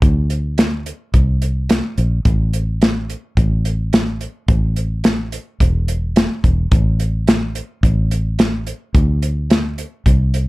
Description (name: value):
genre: straight-eighth soul blues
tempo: 108 BPM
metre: 4/4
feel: swing 55% on 16ths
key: unclear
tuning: A4 = 440 Hz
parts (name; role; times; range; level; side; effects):
- fingered electric bass; bass; 0.0-10.5 s; E1 to D2; -17 LUFS; equal; none
- warm soul drum kit; drums; 0.0-10.5 s; hi-hat, kick drum, snare drum; -16 LUFS; equal; none
room: light reverb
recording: none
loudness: -15 LUFS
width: side -21 dB against mid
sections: 0.0-6.7 A section; 6.7-10.5 B section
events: none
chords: none